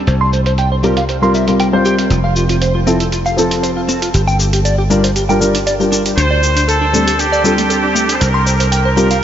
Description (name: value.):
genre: nu-disco, nu disco.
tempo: 118 BPM.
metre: 4/4.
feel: straight.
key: G minor.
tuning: A4 = 440 Hz.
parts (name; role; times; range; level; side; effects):
dark baby grand piano; accompaniment; 0.0-9.1 s; F3 to C5; -16 LUFS; left 1 dB; analog delay.
dry thumbed slap bass; bass; 0.0-9.2 s; F1 to D2; -17 LUFS; equal; none.
direct-recorded clean electric guitar; riff; 0.1-9.2 s; A3 to C6; -19 LUFS; right 1 dB; analog chorus, low-pass filter, analog delay.
electronic hi-hat and cabasa; drums; 0.1-9.2 s; none; -22 LUFS; equal; overdrive, low-pass filter on hats, low-pass filter on perc, low-pass filter on snare.
clear trumpet section; melody; 6.2-9.2 s; G4 to C5; -16 LUFS; right 1 dB; diffuse ambient delay.
room: moderate huge ambient reverb, RT60 8.5 s.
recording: dreamy mix soaked in reverb, nothing above 7.7 kHz.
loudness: -11 LUFS.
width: side -10 dB against mid.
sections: 0.0-9.2 A section.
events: none.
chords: 0.1 C7sus4; 2.1 F; 4.1 Gm7; 6.2 D7sus4; 8.2 C7sus4.